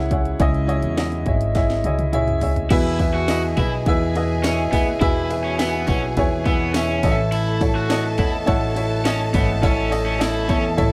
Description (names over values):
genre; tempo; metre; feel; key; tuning
piano-driven pop; 104 BPM; 4/4; straight; E major; A4 = 440 Hz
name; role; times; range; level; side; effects
warm upright piano; accompaniment; 0.0-10.9 s; A2 to F#5; -24 LUFS; equal; none
upright bass; bass; 0.0-10.9 s; G#1 to E2; -26 LUFS; equal; none
house drum kit; drums; 0.1-10.9 s; crash cymbal, hi-hat, kick drum, ride cymbal, snare drum, toms; -25 LUFS; equal; none
clear studio violin section; second line; 2.7-10.9 s; G#4 to A5; -32 LUFS; equal; none
raw garage guitar; riff; 2.7-10.6 s; B3 to F#4; -30 LUFS; equal; overdrive
tambourine; percussion; 2.7-10.6 s; none; -45 LUFS; equal; none
room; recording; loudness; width
light reverb, small room ambience; dark, warm production; -20 LUFS; mono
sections
0.0-2.7 A section; 2.7-10.9 B section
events
drum fill 1.6-2.7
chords
0.0 C#m; 2.7 E; 7.0 A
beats
| 0.40 0.98 1.56 2.13 | 2.71 3.29 3.87 4.44 | 5.02 5.60 6.17 6.75 | 7.33 7.90 8.48 9.05 | 9.63 10.21 10.78